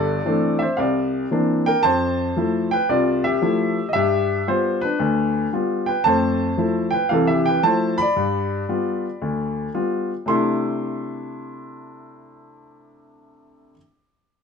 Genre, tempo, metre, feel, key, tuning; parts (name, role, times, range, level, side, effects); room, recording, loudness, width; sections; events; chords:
solo jazz; 114 BPM; 4/4; swing 66% on 8ths; C major; A4 = 444 Hz
warm baby grand piano; solo; 0.0-13.8 s; G1 to C6; -19 LUFS; left 1 dB
wet studio reverb, RT60 0.6 s; band playing live in one room; -18 LUFS; side -6 dB against mid
0.0-1.8 A section; 1.8-10.3 B section; 10.3-14.4 C section
0.0 C69; 0.8 C9; 1.8 Fmaj7; 3.9 G7; 6.0 Fmaj7; 8.2 G7; 10.3 C69